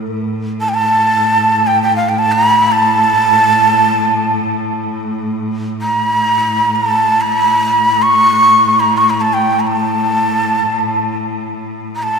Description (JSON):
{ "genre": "Persian modal ensemble", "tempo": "free time", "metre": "none", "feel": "none", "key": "unclear", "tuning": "A4 = 440 Hz", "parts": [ { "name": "rich cello", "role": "drone", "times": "0.0-12.2 s", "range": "A2", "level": "-20 LUFS", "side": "left 1 dB", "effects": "none" }, { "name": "breathy ney", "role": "melody", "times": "0.6-12.2 s", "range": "F5 to C#6", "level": "-11 LUFS", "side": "right 1 dB", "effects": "none" } ], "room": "wet church reverb, RT60 3.2 s", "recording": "recorded in a church or concert hall", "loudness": "-11 LUFS", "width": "side -5 dB against mid", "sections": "0.1-12.2 A section", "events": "none", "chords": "none" }